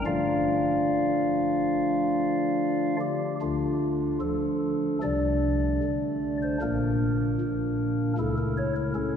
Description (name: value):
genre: classical, chorale-style piece for pipe organ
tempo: 70-78 BPM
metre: 4/4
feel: rubato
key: D minor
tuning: A4 = 437 Hz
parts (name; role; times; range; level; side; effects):
- chamber organ, stopped flute; solo; 0.0-9.2 s; Bb1 to F5; -24 LUFS; equal; none
room: wet church reverb, RT60 3.7 s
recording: heard from further back in the room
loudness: -24 LUFS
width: side -8 dB against mid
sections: 0.0-3.4 A section; 3.4-9.2 B section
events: none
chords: 0.1 Dm; 5.0 D5/C; 6.6 Bb; 8.2 A/C#